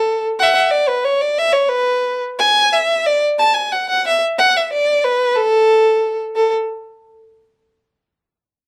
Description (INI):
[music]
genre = musette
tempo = 180 BPM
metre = 3/4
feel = straight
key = A major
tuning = A4 = 443 Hz
[part]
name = rich violin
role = solo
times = 0.0-6.5 s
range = A4 to A5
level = -16 LUFS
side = equal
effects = none
[sound]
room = moderate small room ambience, RT60 0.5 s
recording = none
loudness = -16 LUFS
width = mono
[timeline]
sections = 0.0-6.4 A section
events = none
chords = none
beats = 0.05 | 0.38 0.71 1.04 | 1.38 1.71 2.04 | 2.38 2.72 3.05 | 3.38 3.71 4.04 | 4.37 4.70 5.03 | 5.36 5.70 6.04 | 6.38